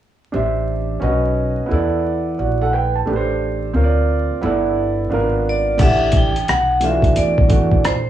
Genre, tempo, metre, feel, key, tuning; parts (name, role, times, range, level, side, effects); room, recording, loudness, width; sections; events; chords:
hip hop, jazz-hop; 88 BPM; 4/4; swing 65% on 16ths; A dorian; A4 = 440 Hz
warm grand piano; accompaniment; 0.3-7.9 s; E3 to A5; -19 LUFS; right 3 dB; cassette tape, plate reverb
upright bass; bass; 0.3-8.1 s; G1 to E2; -21 LUFS; equal
vibraphone with hard mallets; melody; 5.5-8.1 s; C5 to G5; -18 LUFS; equal; cassette tape, plate reverb
dusty soul sampler-style drum kit; drums; 5.8-8.1 s; crash cymbal, hi-hat, kick drum, rim click; -16 LUFS; equal; overdrive, cassette tape
light reverb; home recording on cassette, vinyl crackle, small room reverb; -15 LUFS; side -11 dB against mid
0.3-5.8 A section; 5.8-8.1 B section
0.3 Am7; 1.0 Badd9; 1.7 E7sus4; 3.1 Am7; 3.7 Bbadd9; 4.4 Gadd9; 5.1 G#dim7; 5.8 A5; 6.5 B5; 7.2 E7sus4